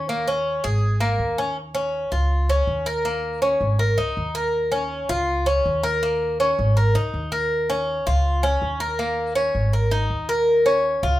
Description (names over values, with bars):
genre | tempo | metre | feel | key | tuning
latin, Cuban son and guajira | 162 BPM | 4/4 | straight | unclear | A4 = 440 Hz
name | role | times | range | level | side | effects
Cuban tres | arpeggios | 0.0-11.2 s | Bb3 to Bb4 | -21 LUFS | equal | none
upright bass | bass | 0.0-11.2 s | Ab1 to Eb2 | -24 LUFS | equal | none
room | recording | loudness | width
moderate large studio reverb, RT60 0.9 s | minimal, uncompressed stereo recording | -19 LUFS | side -15 dB against mid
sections
0.0-1.6 A section; 1.6-11.2 B section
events
none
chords
0.1 Absus2; 1.6 Dbadd9; 2.3 Db; 3.1 Absus2; 4.5 Absus2 (rootless); 9.7 Absus2; 10.5 Absus2 (rootless)